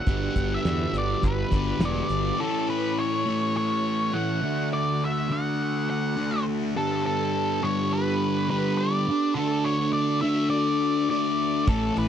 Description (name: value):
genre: psychedelic rock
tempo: 103 BPM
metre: 4/4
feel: straight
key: unclear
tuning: A4 = 440 Hz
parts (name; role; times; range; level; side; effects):
- octave-fuzz lead guitar; melody; 0.0-12.1 s; A4 to F#5; -28 LUFS; equal; distortion, tape echo
- combo organ; sustained chords; 0.0-12.1 s; A3 to D5; -34 LUFS; right 7 dB; none
- thick fuzz guitar; riff; 0.1-12.1 s; G2 to D4; -25 LUFS; left 1 dB; distortion, phaser
- fuzz fingered electric bass; bass; 0.1-2.3, 11.7-12.1 s; E1 to E2; -28 LUFS; equal; overdrive
- cloth-damped thuddy drum kit; drums; 0.1-2.2, 11.7-12.1 s; hi-hat, kick drum, ride cymbal, snare drum; -24 LUFS; equal; none
room: little or no reverb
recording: dry, close 1970s-style studio recording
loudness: -23 LUFS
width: side -9 dB against mid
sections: 0.0-2.4 A section; 2.4-12.1 B section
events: none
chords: 0.1 Gmaj7; 2.4 A; 4.4 D; 6.7 Gadd9; 9.4 D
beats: | 0.08 0.66 1.24 1.82 | 2.40 2.98 3.56 4.14 | 4.72 5.30 5.88 6.46 | 7.04 7.62 8.20 8.78 | 9.36 9.94 10.53 11.11 | 11.69